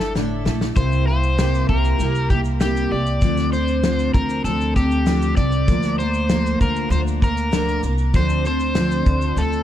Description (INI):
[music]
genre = acoustic pop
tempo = 98 BPM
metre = 4/4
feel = straight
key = unclear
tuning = A4 = 440 Hz
[part]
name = overdriven slide guitar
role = melody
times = 0.0-9.6 s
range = G4 to D5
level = -24 LUFS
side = left 1 dB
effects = plate reverb, ping-pong delay
[part]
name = picked steel-string acoustic guitar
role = accompaniment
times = 0.0-9.6 s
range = A2 to Bb4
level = -23 LUFS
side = equal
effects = double-tracked left and right, plate reverb
[part]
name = upright bass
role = bass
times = 0.0-9.6 s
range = G1 to D2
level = -21 LUFS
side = equal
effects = none
[part]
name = loose indie drum kit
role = drums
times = 0.0-9.6 s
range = kick drum, shaker, snare drum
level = -21 LUFS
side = equal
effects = none
[sound]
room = little or no reverb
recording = dark, warm production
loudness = -17 LUFS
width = side -11 dB against mid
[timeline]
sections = 0.8-9.6 A section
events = drum fill 0.0-0.8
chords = 0.0 Asus4; 0.8 C7; 3.2 Dm7; 5.7 Bb/D; 8.1 Dm7